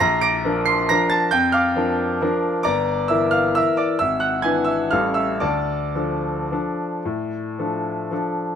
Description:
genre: classical, piano waltz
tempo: 107-143 BPM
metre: 3/4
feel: rubato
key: D minor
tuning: A4 = 440 Hz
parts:
  - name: bright baby grand piano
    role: solo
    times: 0.0-8.6 s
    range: G1 to D7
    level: -18 LUFS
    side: equal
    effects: none
room: light reverb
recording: close, detailed microphones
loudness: -18 LUFS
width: side -8 dB against mid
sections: 0.0-8.6 A section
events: none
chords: 0.0 Bb; 2.7 Edim/G; 4.0 E7/G#; 4.9 A7; 5.4 Dm

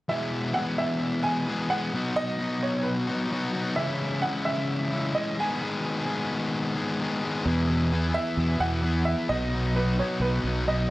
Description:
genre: rock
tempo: 130 BPM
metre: 4/4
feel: straight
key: E major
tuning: A4 = 440 Hz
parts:
  - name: bright upright piano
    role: melody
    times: 0.1-10.9 s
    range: B4 to G#5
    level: -30 LUFS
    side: right 2 dB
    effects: plate reverb
  - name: thick fuzz guitar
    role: riff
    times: 0.1-10.9 s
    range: E2 to G#4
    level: -27 LUFS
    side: left 1 dB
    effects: distortion
  - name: growling fingered electric bass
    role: bass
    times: 7.5-10.9 s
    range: B1 to E2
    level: -26 LUFS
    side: right 1 dB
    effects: overdrive
room: light reverb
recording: nothing above 10.3 kHz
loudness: -24 LUFS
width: side -18 dB against mid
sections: 0.1-7.5 A section; 7.5-10.9 B section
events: none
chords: 0.1 E; 1.9 B; 3.8 C#m; 5.4 G#m/D#; 7.5 Eadd9; 9.3 B

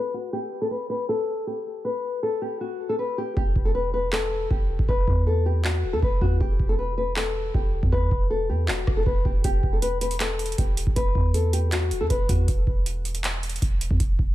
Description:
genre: hip hop, trap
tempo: 158 BPM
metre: 4/4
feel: half-time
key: E minor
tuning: A4 = 439 Hz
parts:
  - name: nylon-string guitar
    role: melody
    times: 0.0-12.5 s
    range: F#4 to B4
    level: -27 LUFS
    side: left 2 dB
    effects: ping-pong delay
  - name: warm 808-style bass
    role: bass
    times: 3.4-14.3 s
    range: D#1 to E2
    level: -25 LUFS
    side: equal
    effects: none
  - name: booming analog drum machine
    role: drums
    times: 3.4-14.3 s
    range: handclaps, hi-hat, kick drum, rim click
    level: -24 LUFS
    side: equal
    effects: overdrive
room: digital ambience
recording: low-pass filter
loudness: -22 LUFS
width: side -15 dB against mid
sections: 0.0-3.4 A section; 3.4-14.3 B section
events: filter sweep 0.0-3.4; hi-hats muted 3.4-9.4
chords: 0.0 N.C.; 3.4 Em; 12.5 N.C.

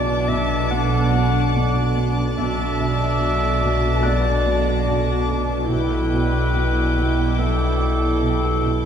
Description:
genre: cinematic, suspense film score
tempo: 72 BPM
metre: 4/4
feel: straight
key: B minor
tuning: A4 = 435 Hz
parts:
  - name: warm symphonic violin section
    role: melody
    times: 0.0-8.9 s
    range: D6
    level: -31 LUFS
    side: left 3 dB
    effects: none
  - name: bright clarinet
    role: second line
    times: 0.0-8.9 s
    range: A4 to F#5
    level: -25 LUFS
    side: left 1 dB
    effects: none
  - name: dark symphonic violin section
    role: second line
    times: 0.0-8.9 s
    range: G5 to A5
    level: -32 LUFS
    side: left 3 dB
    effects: none
  - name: warm studio viola section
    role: accompaniment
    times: 0.0-8.9 s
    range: D4 to E4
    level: -26 LUFS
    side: equal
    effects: none
  - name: deep dark ambient pad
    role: sustained chords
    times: 0.0-8.9 s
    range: E4 to D5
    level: -30 LUFS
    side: left 1 dB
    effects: chorus, built-in reverb
  - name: warm symphonic cello section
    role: riff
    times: 0.0-8.9 s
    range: B2 to B3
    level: -30 LUFS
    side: right 2 dB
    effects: none
  - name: dark symphonic double bass section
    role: bass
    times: 0.0-8.9 s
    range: B1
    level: -25 LUFS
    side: right 2 dB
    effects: none
  - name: rich symphonic cello section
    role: bass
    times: 0.0-8.9 s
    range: B2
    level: -25 LUFS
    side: right 2 dB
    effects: none
  - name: punchy sub bass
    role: drone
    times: 0.0-8.9 s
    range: B1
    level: -25 LUFS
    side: left 1 dB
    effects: none
  - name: felt-muted upright piano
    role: texture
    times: 0.0-8.9 s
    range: E5 to F#6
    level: -38 LUFS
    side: left 2 dB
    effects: none
  - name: warm symphonic violin section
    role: texture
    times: 0.0-5.3 s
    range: D6 to A6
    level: -37 LUFS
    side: left 2 dB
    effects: none
room: wet scoring stage reverb, RT60 1.7 s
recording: heard from further back in the room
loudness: -17 LUFS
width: side -8 dB against mid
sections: 0.0-8.9 A section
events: none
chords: 0.0 Bm7; 5.7 Em7/B

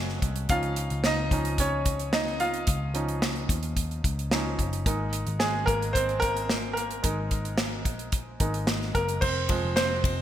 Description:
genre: piano-driven pop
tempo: 110 BPM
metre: 4/4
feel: straight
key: Db major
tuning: A4 = 442 Hz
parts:
  - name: bright upright piano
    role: accompaniment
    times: 0.0-10.2 s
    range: F3 to F5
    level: -29 LUFS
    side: right 1 dB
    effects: none
  - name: vintage muted picked electric bass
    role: bass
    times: 0.0-10.2 s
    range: F1 to Eb2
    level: -31 LUFS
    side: left 1 dB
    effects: none
  - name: modern studio drum kit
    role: drums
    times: 0.1-10.2 s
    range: crash cymbal, hi-hat, kick drum, ride cymbal, snare drum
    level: -28 LUFS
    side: equal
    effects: gated reverb
room: light reverb, studio reverb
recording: bright 1980s-style digital production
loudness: -24 LUFS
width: side -11 dB against mid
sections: 0.0-9.2 A section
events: upright piano solo 0.0-9.2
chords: 0.5 Dbadd9; 4.9 Absus2; 9.2 Fm

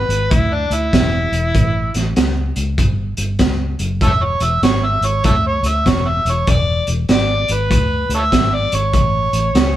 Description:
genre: electric blues shuffle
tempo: 98 BPM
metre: 4/4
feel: swing 64% on 8ths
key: E mixolydian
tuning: A4 = 440 Hz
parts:
  - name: overdriven harmonica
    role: melody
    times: 0.0-9.8 s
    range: D4 to E5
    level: -18 LUFS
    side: equal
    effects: none
  - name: vintage muted fingered electric bass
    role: bass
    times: 0.0-9.8 s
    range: E1 to D2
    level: -19 LUFS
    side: equal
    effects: none
  - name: crunchy breakbeat drum kit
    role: drums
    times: 0.1-9.7 s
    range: hi-hat, kick drum, snare drum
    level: -17 LUFS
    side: right 1 dB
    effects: none
room: light reverb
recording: band playing live in one room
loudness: -14 LUFS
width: side -12 dB against mid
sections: 0.0-9.8 A section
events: none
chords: 0.0 E7; 1.5 A7; 4.0 E7; 8.9 A

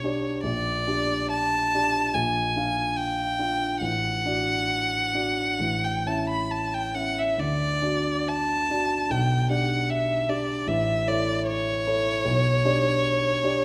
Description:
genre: classical, romantic duo for violin and grand piano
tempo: 63-77 BPM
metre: 4/4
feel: rubato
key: D major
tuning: A4 = 440 Hz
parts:
  - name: rich violin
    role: melody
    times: 0.0-13.6 s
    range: C#5 to B5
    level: -27 LUFS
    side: equal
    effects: none
  - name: dark grand piano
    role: accompaniment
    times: 0.0-13.6 s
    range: A1 to F5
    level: -29 LUFS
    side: equal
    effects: none
room: wet recital hall reverb, RT60 1.4 s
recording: none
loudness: -25 LUFS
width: mono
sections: 0.0-13.6 A section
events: none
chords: 0.4 Gm/Bb; 2.1 Bb7; 3.8 D/A; 5.6 A; 7.4 D; 9.1 G/B; 10.7 A; 12.3 G/B

